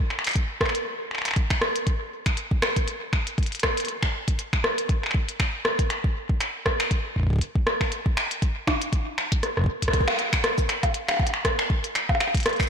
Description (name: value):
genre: IDM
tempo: 119 BPM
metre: 4/4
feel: swing 56% on 16ths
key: none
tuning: none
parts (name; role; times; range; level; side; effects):
- glitchy drum kit; drums; 0.1-12.7 s; cabasa, finger snaps, hi-hat, percussion blips, rim click; -24 LUFS; equal; soft clipping on snare, tape echo
- electronic kick drum; drums; 0.4-12.7 s; none; -24 LUFS; equal; none
room: moderate echo chamber reverb, RT60 1.8 s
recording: blown-out, overdriven recording, overdrive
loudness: -22 LUFS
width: side -7 dB against mid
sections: 0.0-9.9 A section; 9.9-12.7 A section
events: drum fill 9.4-9.9; band accent 9.9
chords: none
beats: 0.35 0.86 1.36 | 1.87 2.37 2.88 3.38 | 3.88 4.39 4.89 5.40 | 5.90 6.41 6.91 7.41 | 7.92 8.42 8.93 9.43 | 9.94 10.44 10.94 11.45 | 11.95 12.46